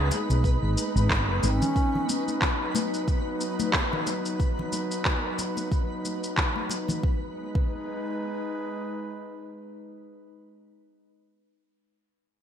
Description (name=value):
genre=organic downtempo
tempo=91 BPM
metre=4/4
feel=swing 57% on 16ths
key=G# minor pentatonic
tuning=A4 = 440 Hz
part: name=mellow hollow bass bansuri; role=melody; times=0.0-2.4 s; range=C#4 to G#4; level=-32 LUFS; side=equal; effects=ping-pong delay
part: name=airy breathy pad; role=sustained chords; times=0.0-10.1 s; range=F#3 to B4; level=-32 LUFS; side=equal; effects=chorus, vintage 12-bit sampler grit, sidechain pumping
part: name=woody fretless electric bass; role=bass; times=0.0-1.6 s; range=F#1 to B1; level=-24 LUFS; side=equal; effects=sidechain pumping
part: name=twinkling granular texture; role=texture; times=0.0-7.1 s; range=B3 to B4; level=-37 LUFS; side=equal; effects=built-in reverb, ensemble chorus
part: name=electronic shaker and handclaps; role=drums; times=0.1-7.0 s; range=none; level=-29 LUFS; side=equal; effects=gated reverb
part: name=congas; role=percussion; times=0.1-7.0 s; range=none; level=-34 LUFS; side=left 6 dB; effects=none
part: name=electronic kick drum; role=drums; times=0.4-7.7 s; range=none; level=-26 LUFS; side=equal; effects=none
room=moderate plate reverb, RT60 2.2 s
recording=bright 1980s-style digital production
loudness=-24 LUFS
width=side -9 dB against mid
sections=0.0-7.0 A section; 7.0-9.7 B section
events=none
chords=0.0 G#m; 1.8 B; 7.0 G#m